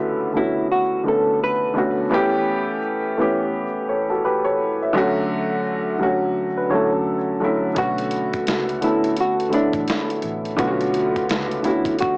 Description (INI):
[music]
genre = lo-fi hip hop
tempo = 85 BPM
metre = 4/4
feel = swing 62% on 16ths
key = B minor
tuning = A4 = 440 Hz
[part]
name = hollow-body jazz guitar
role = melody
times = 0.0-1.7, 7.8-12.2 s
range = D4 to B4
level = -22 LUFS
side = equal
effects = cassette tape
[part]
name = dark upright piano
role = accompaniment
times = 0.0-12.2 s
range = C#3 to E5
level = -20 LUFS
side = equal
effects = cassette tape
[part]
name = tine electric piano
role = second line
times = 6.6-7.7 s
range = C#4 to C#5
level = -24 LUFS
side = right 1 dB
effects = slow stereo tremolo, cassette tape, tape echo
[part]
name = vintage muted fingered electric bass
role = bass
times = 7.8-11.6 s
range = A1 to C#2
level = -34 LUFS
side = equal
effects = none
[part]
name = dusty soul sampler-style drum kit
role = drums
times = 7.8-12.2 s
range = hi-hat, kick drum, snare drum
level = -27 LUFS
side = equal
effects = cassette tape
[sound]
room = light reverb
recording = home recording on cassette, small speaker sound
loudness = -18 LUFS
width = side -34 dB against mid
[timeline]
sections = 0.0-12.2 A section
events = none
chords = 0.0 Bm9; 2.1 A9; 4.9 Dmaj7; 7.8 Bm9